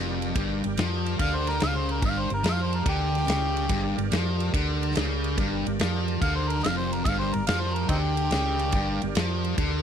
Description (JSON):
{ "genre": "blues rock power trio and southern rock", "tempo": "143 BPM", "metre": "4/4", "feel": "swing 68% on 8ths", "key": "G minor", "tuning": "A4 = 445 Hz", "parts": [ { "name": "overdriven tonewheel organ", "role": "sustained chords", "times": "0.0-9.8 s", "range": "G4 to G5", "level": "-38 LUFS", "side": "right 4 dB", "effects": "slow rotary speaker, chorus vibrato" }, { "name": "sludgy distorted guitar", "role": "riff", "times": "0.0-9.8 s", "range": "F2 to F3", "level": "-28 LUFS", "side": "left 1 dB", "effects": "overdrive" }, { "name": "hollow-body short-scale fingered electric bass", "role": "bass", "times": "0.0-9.8 s", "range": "F1 to F2", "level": "-28 LUFS", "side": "equal", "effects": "none" }, { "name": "big rock drum kit", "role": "drums", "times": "0.2-9.7 s", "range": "kick drum, ride cymbal, snare drum", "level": "-30 LUFS", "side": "equal", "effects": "none" }, { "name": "clear harmonica", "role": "melody", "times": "1.2-9.1 s", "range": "C4 to F5", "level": "-29 LUFS", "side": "equal", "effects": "overdrive, slapback echo" } ], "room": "little or no reverb", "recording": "dry, close 1970s-style studio recording", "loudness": "-23 LUFS", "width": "side -8 dB against mid", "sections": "0.0-9.8 A section", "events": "harmonica solo 0.0-9.8", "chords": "0.0 Gm" }